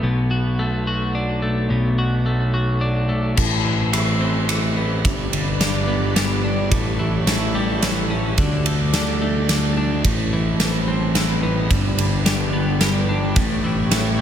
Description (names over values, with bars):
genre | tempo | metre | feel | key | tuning
post-rock | 108 BPM | 3/4 | straight | unclear | A4 = 440 Hz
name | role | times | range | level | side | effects
twelve-string electric guitar | arpeggios | 0.0-14.2 s | G2 to F#4 | -22 LUFS | left 2 dB | spring reverb, digital delay
fuzz picked electric bass | bass | 0.0-14.2 s | G1 to D2 | -23 LUFS | right 1 dB | overdrive
lush unison pad | sustained chords | 3.4-14.2 s | D3 to E5 | -29 LUFS | right 1 dB | chorus
huge arena drum kit | drums | 3.4-14.0 s | crash cymbal, kick drum, ride cymbal, rim click, snare drum | -21 LUFS | right 1 dB | none
room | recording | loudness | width
light reverb, studio ambience | none | -17 LUFS | side -9 dB against mid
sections
0.0-3.4 A section; 3.4-14.2 B section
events
none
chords
0.0 Bm7; 3.4 Amadd9; 5.0 G; 6.7 A7; 8.4 Dsus4; 10.0 Amadd9; 11.7 G; 13.4 A7